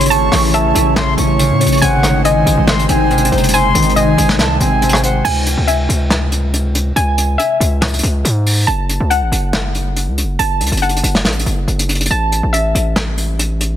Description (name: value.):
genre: hip hop, trap.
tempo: 140 BPM.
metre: 4/4.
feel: half-time.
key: C# harmonic minor.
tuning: A4 = 439 Hz.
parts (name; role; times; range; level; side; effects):
breathy mellow silver concert flute; second line; 0.0-5.2 s; F#5 to C#6; -18 LUFS; right 1 dB; digital delay.
concert harp; accompaniment; 0.0-7.6 s; B#2 to C#5; -18 LUFS; left 1 dB; low-pass filter.
glassy FM pad; sustained chords; 0.0-5.2 s; G#3 to C#5; -20 LUFS; equal; ensemble chorus, built-in reverb.
soft round pluck; arpeggios; 0.0-13.8 s; D#5 to A5; -19 LUFS; equal; chorus, low-pass filter, digital delay.
distorted 808-style bass; bass; 0.0-13.8 s; F#1 to A2; -16 LUFS; equal; distortion.
soft brush drum kit; drums; 0.0-13.7 s; crash cymbal, hi-hat, rim click, snare drum; -18 LUFS; equal; soft clipping on snare.
room: light reverb.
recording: dense, heavily limited modern master.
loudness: -12 LUFS.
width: side -10 dB against mid.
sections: 0.0-5.2 A section; 5.2-13.8 B section.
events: none.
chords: 0.0 A; 1.8 G#; 5.2 C#m; 8.7 F#m; 12.1 A5.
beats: | 0.10 0.53 0.96 1.39 | 1.82 2.25 2.68 3.10 | 3.53 3.96 4.39 4.82 | 5.25 5.68 6.11 6.53 | 6.96 7.39 7.82 8.25 | 8.68 9.11 9.53 9.96 | 10.39 10.82 11.25 11.68 | 12.11 12.53 12.96 13.39.